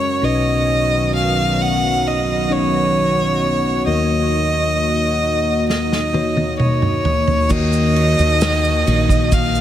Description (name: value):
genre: pop ballad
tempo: 66 BPM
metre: 4/4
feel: straight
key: Eb minor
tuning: A4 = 439 Hz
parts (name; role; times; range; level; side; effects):
- clear violin; melody; 0.0-9.6 s; C#5 to F#5; -19 LUFS; equal; diffuse ambient delay
- bell-like tine electric piano; accompaniment; 0.0-9.6 s; B1 to C#5; -21 LUFS; left 2 dB; none
- chorused pulse-width pad; sustained chords; 0.0-9.6 s; D#3 to Gb4; -22 LUFS; equal; none
- unplugged drum kit; drums; 5.7-9.5 s; crash cymbal, kick drum, ride cymbal, snare drum, toms; -20 LUFS; right 1 dB; none
- fingerpicked steel-string acoustic guitar; arpeggios; 7.5-9.6 s; Eb3 to Gb4; -26 LUFS; right 5 dB; none
- woody fretless electric bass; bass; 7.5-9.6 s; Bb1 to Eb2; -18 LUFS; right 1 dB; analog chorus
- tube shaker; percussion; 7.5-9.6 s; none; -34 LUFS; right 8 dB; none
room: moderate huge ambient reverb, RT60 7.6 s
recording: dreamy mix soaked in reverb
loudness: -15 LUFS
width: side -11 dB against mid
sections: 0.0-7.5 A section; 7.5-9.6 B section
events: drum fill 5.7-7.5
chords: 0.2 Badd9; 3.9 Ebm